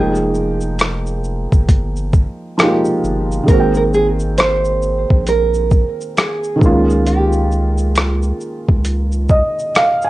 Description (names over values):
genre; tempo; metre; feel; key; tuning
lo-fi hip hop; 67 BPM; 4/4; swing 61% on 16ths; Ab major; A4 = 439 Hz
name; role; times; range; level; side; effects
nylon-string guitar; melody; 0.0-8.8 s; G4 to C5; -19 LUFS; right 3 dB; low-pass filter, analog delay
felt-muted upright piano; accompaniment; 0.0-10.1 s; Eb3 to Ab5; -18 LUFS; right 1 dB; low-pass filter
saturated sub bass; bass; 0.0-9.4 s; F1 to Db2; -18 LUFS; equal; none
boom bap sampler-style drum kit; drums; 0.1-10.1 s; hi-hat, kick drum, rim click, shaker; -14 LUFS; equal; vintage 12-bit sampler grit
room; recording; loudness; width
light reverb; cassette tape; -13 LUFS; side -17 dB against mid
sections
0.0-10.1 A section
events
none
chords
0.0 Fm11; 3.5 Abmaj9; 6.6 Db69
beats
0.79 1.69 2.58 | 3.48 4.38 5.27 6.17 | 7.06 7.96 8.85 9.75